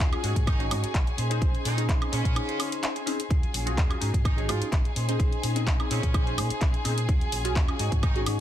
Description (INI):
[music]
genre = filtered disco house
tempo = 127 BPM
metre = 4/4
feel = swing 53% on 16ths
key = Bb minor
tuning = A4 = 442 Hz
[part]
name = funky polysynth comp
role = accompaniment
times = 0.0-8.4 s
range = C4 to C5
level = -33 LUFS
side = left 1 dB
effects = chorus, phaser, cassette tape, sidechain pumping
[part]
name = warm symphonic violin section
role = sustained chords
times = 0.0-8.4 s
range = Ab4 to Ab5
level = -37 LUFS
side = right 1 dB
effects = sidechain pumping
[part]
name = clean electric guitar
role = riff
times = 0.0-8.4 s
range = Gb3 to Db5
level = -37 LUFS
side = left 2 dB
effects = sidechain pumping
[part]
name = overdriven fingered electric bass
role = bass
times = 0.0-8.4 s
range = Ab1 to Bb2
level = -30 LUFS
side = equal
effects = sidechain pumping
[part]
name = electronic kick drum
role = drums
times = 0.0-8.1 s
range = none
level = -25 LUFS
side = equal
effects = small room ambience
[part]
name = house drum kit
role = drums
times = 0.0-8.4 s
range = handclaps, hi-hat, woodblock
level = -33 LUFS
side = equal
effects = sidechain pumping on hats, small room ambience, sidechain pumping on perc
[part]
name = brilliant horn section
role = melody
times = 0.5-8.2 s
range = Db3 to F4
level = -38 LUFS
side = right 1 dB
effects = sidechain pumping, dub echo
[sound]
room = digital ambience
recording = dense, heavily limited modern master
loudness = -24 LUFS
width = side -11 dB against mid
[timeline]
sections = 0.0-8.4 A section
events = break 2.4-3.3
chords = 0.2 Ab7sus4; 1.2 Bbm11; 3.3 Ebm11; 4.0 Ab7sus4; 5.0 Bbm11; 7.1 Ebm11; 7.8 Ab7sus4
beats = 0.00 0.47 0.94 | 1.42 1.89 2.36 2.83 | 3.31 3.78 4.25 4.72 | 5.20 5.67 6.14 6.61 | 7.08 7.56 8.03